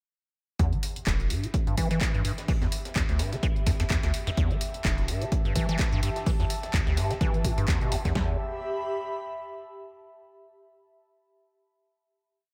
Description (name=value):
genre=acid house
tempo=127 BPM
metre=4/4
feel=swing 56% on 16ths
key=E minor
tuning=A4 = 440 Hz
part: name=liquid acid bass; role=riff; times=0.6-8.4 s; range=E1 to E3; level=-31 LUFS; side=equal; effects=phaser, overdrive, cassette tape, sidechain pumping, analog delay
part: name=breakbeat sampler-style drum kit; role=drums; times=0.6-8.1 s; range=hi-hat, snare drum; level=-44 LUFS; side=equal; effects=none
part: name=punchy analog drum machine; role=drums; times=0.6-8.3 s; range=kick drum, snare drum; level=-30 LUFS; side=equal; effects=none
part: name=punchy analog drum machine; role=drums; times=0.6-8.1 s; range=handclaps, hi-hat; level=-37 LUFS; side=equal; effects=none
part: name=airy breathy pad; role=texture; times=0.6-10.0 s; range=G4 to B5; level=-39 LUFS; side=equal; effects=chorus, sidechain pumping
room=light reverb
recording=none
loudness=-27 LUFS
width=mono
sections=0.6-8.2 groove; 8.2-10.0 final chord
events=fade-in on analog synth pad 0.6-8.2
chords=0.6 Em